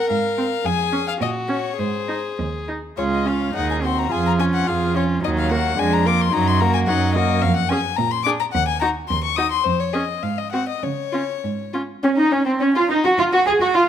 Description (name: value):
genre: quick classical-period movement for string quartet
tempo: 99-111 BPM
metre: 2/4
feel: rubato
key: Db major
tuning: A4 = 439 Hz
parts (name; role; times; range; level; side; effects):
- warm violin; melody; 0.0-13.9 s; C4 to Eb6; -23 LUFS; left 10 dB; none
- warm violin; second line; 0.0-13.8 s; C4 to Bb4; -25 LUFS; left 3 dB; none
- rich cello; bass; 0.1-13.9 s; Db2 to Ab4; -22 LUFS; right 4 dB; none
- rich viola; accompaniment; 0.4-13.9 s; Gb3 to Ab4; -23 LUFS; right 2 dB; none
room: moderate recital hall reverb, RT60 1.8 s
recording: close, detailed microphones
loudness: -18 LUFS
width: side -9 dB against mid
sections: 0.0-3.0 A section; 3.0-12.0 B section; 12.0-13.9 A section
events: none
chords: 0.0 Fm/Ab; 0.6 Db/F; 1.2 Gb/Bb; 1.8 Ab; 3.0 Db; 3.5 Ab7/Eb; 4.1 Db/F; 5.2 Ebm; 5.8 Bb7/F; 6.3 Ebm/Gb; 7.4 Db/F; 8.0 Bb; 8.5 Ebm; 9.7 Db/F; 10.2 Ab7; 10.8 Db5; 12.0 Ebm13; 13.2 Fm